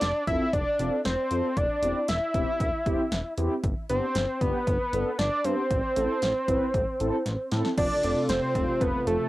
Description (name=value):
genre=synth-pop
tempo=116 BPM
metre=4/4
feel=straight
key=unclear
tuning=A4 = 440 Hz
part: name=fat analog lead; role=melody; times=0.0-9.3 s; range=A4 to E5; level=-27 LUFS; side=equal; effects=none
part: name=chorused synth bass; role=bass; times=0.0-9.2 s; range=E1 to A2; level=-31 LUFS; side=equal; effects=none
part: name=punchy analog drum machine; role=drums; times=0.0-9.2 s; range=crash cymbal, hi-hat, kick drum, snare drum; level=-30 LUFS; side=equal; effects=overdrive
part: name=mellow synth brass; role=accompaniment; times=0.3-9.3 s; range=B3 to C5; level=-30 LUFS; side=equal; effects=chorus, cassette tape
part: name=warm analog pad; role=sustained chords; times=7.8-9.3 s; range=C3 to F4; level=-33 LUFS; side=right 1 dB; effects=chorus, cassette tape
part: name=felt-muted upright piano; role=arpeggios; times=7.8-9.3 s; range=F3 to C5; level=-35 LUFS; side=right 3 dB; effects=cassette tape
room=moderate booth ambience, RT60 0.2 s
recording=home recording on cassette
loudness=-24 LUFS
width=side -17 dB against mid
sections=0.0-7.8 A section; 7.8-9.3 B section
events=drum fill 7.3-7.8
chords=0.0 F; 1.6 Cadd9/E; 3.6 G; 5.7 Am; 7.8 F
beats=0.02 0.53 1.05 | 1.57 2.09 2.60 3.12 | 3.64 4.16 4.67 5.19 | 5.71 6.22 6.74 7.26 | 7.78 8.29 8.81